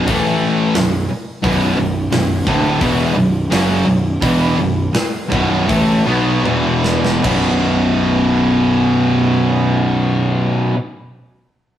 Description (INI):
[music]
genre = hard rock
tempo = 75-88 BPM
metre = 4/4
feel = straight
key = B minor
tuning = A4 = 439 Hz
[part]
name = distorted electric guitar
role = riff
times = 0.0-10.8 s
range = B1 to B3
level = -20 LUFS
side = right 3 dB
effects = overdrive
[part]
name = distorted electric guitar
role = riff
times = 0.0-10.8 s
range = B1 to B3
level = -18 LUFS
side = equal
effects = overdrive
[part]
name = sludgy distorted guitar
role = riff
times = 0.0-10.8 s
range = B1 to B3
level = -20 LUFS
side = left 4 dB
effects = overdrive
[part]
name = fuzz picked electric bass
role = bass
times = 0.0-10.5 s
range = B0 to B1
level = -22 LUFS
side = equal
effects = overdrive
[part]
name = tight metal drum kit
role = drums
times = 0.1-7.4 s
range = crash cymbal, hi-hat, kick drum, snare drum, toms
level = -22 LUFS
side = equal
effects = none
[sound]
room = moderate stone room reverb, RT60 1.1 s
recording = rough rehearsal-room recording, tube saturation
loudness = -13 LUFS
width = side -11 dB against mid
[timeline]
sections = 0.0-7.2 A section; 7.2-10.4 B section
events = slowing down 1.4-7.2; drum fill 6.4-7.2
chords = 0.1 A5; 0.8 Bm; 6.4 E5; 7.2 B5